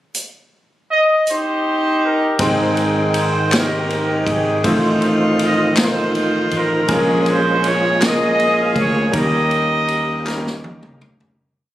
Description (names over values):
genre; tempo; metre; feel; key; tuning
slow gospel; 53 BPM (dotted quarters); 6/8; straight; unclear; A4 = 441 Hz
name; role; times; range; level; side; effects
swinging big-band drum kit; drums; 0.1-11.4 s; hi-hat, kick drum, ride cymbal, snare drum, toms; -24 LUFS; equal; none
warm horn section; melody; 0.9-10.7 s; C4 to F5; -18 LUFS; equal; none
bright baby grand piano; accompaniment; 2.4-11.4 s; Ab2 to G5; -20 LUFS; equal; none
bright tonewheel organ; sustained chords; 2.4-11.4 s; Eb3 to G5; -23 LUFS; right 1 dB; slow rotary speaker, chorus vibrato
fingered electric bass; bass; 2.4-11.4 s; Ab1 to Eb2; -24 LUFS; equal; none
group handclap; percussion; 3.5-10.6 s; none; -24 LUFS; left 2 dB; none
room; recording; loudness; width
moderate concert hall reverb, RT60 2.4 s; recorded on a phone in the room, studio reverb; -14 LUFS; side -13 dB against mid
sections
0.1-2.4 pickup bar; 2.4-11.4 chorus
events
fade-out 9.1-11.4; drum fill 10.3-11.4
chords
0.1 Eb6; 2.4 Abmaj7; 4.6 F7/A; 6.9 Bbm7; 9.1 Eb7